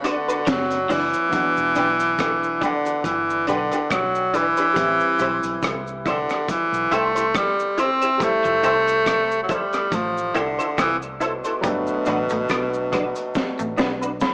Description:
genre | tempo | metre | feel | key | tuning
lovers rock reggae | 70 BPM | 4/4 | swing 56% on 16ths | E minor | A4 = 445 Hz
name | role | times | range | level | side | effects
bright tenor saxophone | melody | 0.0-14.3 s | B2 to C4 | -23 LUFS | equal | tape echo
clear grand piano | accompaniment | 0.0-14.3 s | E3 to B5 | -33 LUFS | equal | none
twelve-string electric guitar | stabs | 0.0-14.1 s | D4 to C5 | -30 LUFS | equal | ensemble chorus, tape echo
crunchy breakbeat drum kit | drums | 0.0-14.3 s | hi-hat, kick drum, rim click, snare drum | -29 LUFS | equal | gated reverb
cabasa | percussion | 0.1-14.3 s | none | -46 LUFS | equal | tape echo
twangy electric guitar | riff | 0.5-1.0, 8.4-14.0 s | F3 to C4 | -33 LUFS | equal | analog chorus
vintage muted fingered electric bass | bass | 0.5-14.2 s | E1 to C2 | -39 LUFS | equal | none
room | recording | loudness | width
moderate plate reverb, RT60 2.2 s | small speaker sound | -21 LUFS | mono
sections
0.0-1.3 A section; 1.3-14.3 B section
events
drum fill 13.4-14.3; grand piano fill 13.8-14.3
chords
0.0 Gmaj7 (rootless); 1.3 Em7; 4.8 Am7 (rootless); 8.2 Fmaj7 (rootless); 11.6 Gmaj7

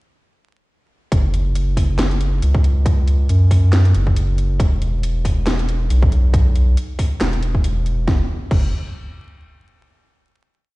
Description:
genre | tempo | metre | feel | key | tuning
deep dubstep | 138 BPM | 4/4 | swing 57% on 16ths, half-time | unclear | A4 = 440 Hz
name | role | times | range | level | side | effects
soft dub sub bass | bass | 1.1-8.7 s | E1 to F#2 | -16 LUFS | equal | none
electronic kick drum | drums | 1.1-8.6 s | none | -17 LUFS | equal | studio reverb
garage drum kit | drums | 1.1-8.6 s | crash cymbal, handclaps, hi-hat, snare drum | -26 LUFS | equal | studio reverb
room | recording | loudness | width
digital ambience | played on a big sound system in a bare room, large studio reverb, vinyl crackle, nothing above 10.9 kHz | -15 LUFS | side -21 dB against mid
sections
1.1-8.1 drop; 8.1-9.8 final note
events
drop 1.1-8.1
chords
none

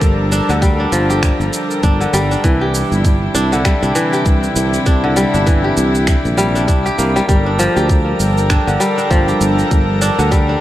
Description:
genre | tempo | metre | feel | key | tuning
organic downtempo | 99 BPM | 4/4 | swing 58% on 16ths | G dorian | A4 = 440 Hz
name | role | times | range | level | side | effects
warm chamber string section | sustained chords | 0.0-10.6 s | C3 to Bb4 | -20 LUFS | equal | sidechain pumping
kora | arpeggios | 0.0-10.6 s | D3 to G4 | -17 LUFS | equal | digital delay
sustaining fretless electric bass | bass | 0.0-10.5 s | G1 to D2 | -18 LUFS | equal | analog chorus, sidechain pumping
electronic cabasa and finger snaps | drums | 0.0-10.5 s | none | -24 LUFS | right 2 dB | none
electronic kick drum | drums | 0.0-10.5 s | none | -14 LUFS | equal | none
drifting glass-harmonics texture | texture | 0.0-10.6 s | G5 | -29 LUFS | right 2 dB | chorus, built-in reverb
room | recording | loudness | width
light reverb, digital ambience | none | -12 LUFS | side -14 dB against mid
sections
0.0-10.6 A section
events
none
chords
0.0 Gm9; 2.4 C7; 7.3 Gm9

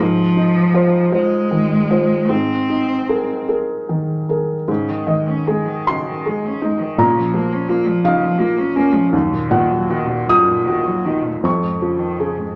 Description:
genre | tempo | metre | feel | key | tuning
neoclassical piano and strings | 49-57 BPM (dotted quarters) | 6/8 | rubato | unclear | A4 = 442 Hz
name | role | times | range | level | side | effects
rich cello | second line | 0.0-12.6 s | F2 to Db4 | -22 LUFS | equal | none
felt-muted upright piano | accompaniment | 0.0-12.6 s | Eb2 to Eb6 | -19 LUFS | equal | none
room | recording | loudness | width
wet large studio reverb, RT60 0.9 s | none | -18 LUFS | mono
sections
0.0-4.7 A section; 4.7-12.6 B section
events
none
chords
0.0 Fm7/Ab; 2.3 Abadd9; 4.7 Absus4; 7.0 Bbm; 9.1 Ebm; 11.4 Db/F

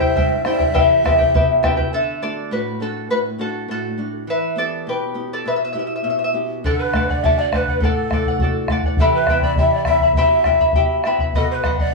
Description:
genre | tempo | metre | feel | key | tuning
andean folk, Andean ensemble | 102 BPM | 2/4 | straight | unclear | A4 = 439 Hz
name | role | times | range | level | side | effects
mellow hollow pan flute | melody | 0.0-1.6, 6.6-11.9 s | A4 to E5 | -19 LUFS | left 4 dB | none
breathy large quena | second line | 0.0-1.6, 6.7-11.9 s | A4 to A5 | -23 LUFS | right 2 dB | none
charango | accompaniment | 0.0-11.9 s | E4 to B5 | -21 LUFS | equal | none
nylon-string guitar | accompaniment | 0.0-11.9 s | G2 to G4 | -26 LUFS | equal | none
bombo | percussion | 0.0-1.9, 6.6-11.9 s | none | -20 LUFS | left 1 dB | none
room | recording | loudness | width
wet stone room reverb, RT60 0.9 s | band playing live in one room, small room ambience | -16 LUFS | side -2 dB against mid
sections
0.0-1.9 A section; 1.9-6.6 B section; 6.6-11.9 C section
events
charango solo 1.9-6.6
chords
0.0 C; 0.7 Em; 1.9 D; 4.3 Em; 6.6 D; 9.0 Em; 11.3 B

